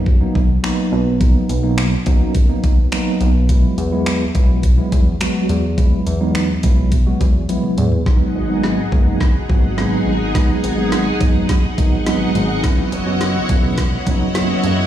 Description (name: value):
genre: dance-pop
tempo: 105 BPM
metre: 4/4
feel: straight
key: unclear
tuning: A4 = 440 Hz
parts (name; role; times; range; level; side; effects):
- mellow tine electric piano; accompaniment; 0.0-14.7 s; F#3 to F#4; -20 LUFS; right 1 dB; fast stereo tremolo, sidechain pumping
- chorused synth bass; bass; 0.0-14.9 s; E1 to F#2; -19 LUFS; equal; sidechain pumping
- smooth R&B drum kit; drums; 0.1-14.8 s; finger snaps, hi-hat, kick drum, snare drum, toms; -17 LUFS; equal; none
- string machine, full ensemble; sustained chords; 8.1-14.9 s; D#4 to F#5; -23 LUFS; equal; ensemble chorus, sidechain pumping
room: light reverb, digital ambience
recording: played on a big sound system in a bare room, stone room reverb, studio reverb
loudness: -14 LUFS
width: side -12 dB against mid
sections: 0.0-8.1 A section; 8.1-14.9 B section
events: drum fill 7.5-8.1, 8.1-14.9; build-up 8.1-14.9; filter sweep 8.1-14.9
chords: 0.0 Bmaj7; 3.5 Eadd9; 8.1 G#m7; 12.6 F#7sus4